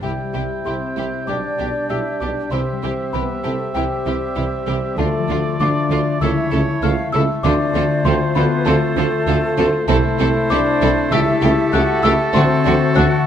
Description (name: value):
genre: cinematic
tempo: 97 BPM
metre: 4/4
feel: straight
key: C major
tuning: A4 = 441 Hz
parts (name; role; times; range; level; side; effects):
- rich studio violin section; melody; 0.0-13.1 s; F4 to A4; -29 LUFS; left 2 dB; none
- small celesta; melody; 0.0-13.3 s; G5 to F#6; -26 LUFS; left 4 dB; none
- clear oboe; second line; 0.0-13.3 s; A4 to G5; -27 LUFS; right 2 dB; none
- hollow concert flute; second line; 0.0-13.3 s; G4 to F#5; -26 LUFS; equal; none
- warm clarinet; second line; 0.0-13.3 s; E4 to G4; -28 LUFS; left 2 dB; none
- warm studio violin section; second line; 0.0-13.0 s; D4 to F4; -31 LUFS; equal; none
- rich studio viola section; accompaniment; 0.0-13.0 s; E3 to C4; -27 LUFS; right 2 dB; none
- warm bassoon; accompaniment; 0.0-13.3 s; A3 to E4; -26 LUFS; right 4 dB; none
- mellow French horn section; sustained chords; 0.0-13.3 s; G3 to F#4; -25 LUFS; left 3 dB; none
- concert harp; arpeggios; 0.0-13.3 s; B2 to G5; -24 LUFS; left 8 dB; none
- rich studio cello section; bass; 0.0-13.0 s; B2 to D3; -26 LUFS; right 2 dB; none
- rich studio double bass section; bass; 0.0-13.0 s; B1 to D2; -25 LUFS; right 3 dB; none
- warm tuba; bass; 0.0-13.1 s; B1 to D2; -26 LUFS; right 4 dB; none
room: moderate recital hall reverb, RT60 1.8 s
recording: none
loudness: -16 LUFS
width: side -9 dB against mid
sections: 0.0-13.3 A section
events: none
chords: 0.0 C; 1.3 G/B; 2.5 C; 5.0 Dm; 6.2 A/C#; 7.4 Dm7; 9.9 Am/C; 11.1 A7/C#; 12.3 D7